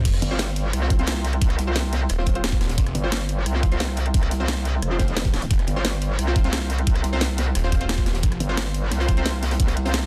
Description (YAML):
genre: dark technical drum and bass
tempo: 176 BPM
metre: 4/4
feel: straight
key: unclear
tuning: A4 = 440 Hz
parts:
  - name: phased detuned saw bass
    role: bass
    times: 0.0-2.9, 5.5-8.4 s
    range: Eb1 to F1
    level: -28 LUFS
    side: equal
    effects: phaser, overdrive
  - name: crunchy breakbeat drum kit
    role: drums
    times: 0.1-10.1 s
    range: hi-hat, snare drum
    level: -38 LUFS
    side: equal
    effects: none
  - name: drum and bass drum kit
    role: drums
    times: 0.1-10.0 s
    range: crash cymbal, hi-hat, rim click, snare drum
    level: -30 LUFS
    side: equal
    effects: none
  - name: electronic kick drum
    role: drums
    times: 0.1-9.7 s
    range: none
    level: -24 LUFS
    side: equal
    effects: none
  - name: metallic wobble bass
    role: bass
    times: 0.2-10.1 s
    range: F1 to C2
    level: -25 LUFS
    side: equal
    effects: chorus
  - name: orchestra-hit-like synth stab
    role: stabs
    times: 0.3-9.9 s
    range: C4 to C5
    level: -34 LUFS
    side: equal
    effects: built-in reverb, delay
room: little or no reverb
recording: dense, heavily limited modern master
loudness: -22 LUFS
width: mono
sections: 0.0-10.1 A section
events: none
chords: 0.0 F5